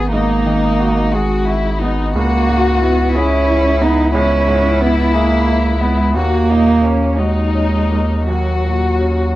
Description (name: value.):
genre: neoclassical piano and strings.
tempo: 54-61 BPM (dotted quarters).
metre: 6/8.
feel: rubato.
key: unclear.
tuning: A4 = 440 Hz.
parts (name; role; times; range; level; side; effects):
muted chamber violin section; melody; 0.0-9.3 s; C#4 to G#4; -19 LUFS; left 4 dB; none.
muted cello; second line; 0.0-9.3 s; F#3 to D#4; -17 LUFS; right 3 dB; none.
bright upright piano; accompaniment; 0.0-9.4 s; C#2 to G#4; -21 LUFS; right 2 dB; none.
saturated sub bass; bass; 0.0-9.4 s; G#1 to D#2; -17 LUFS; equal; none.
room: light reverb.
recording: rough home demo mix.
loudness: -12 LUFS.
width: side -16 dB against mid.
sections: 0.0-9.4 A section.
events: none.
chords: 0.0 G#m7; 2.1 C#m7; 6.2 D#m7.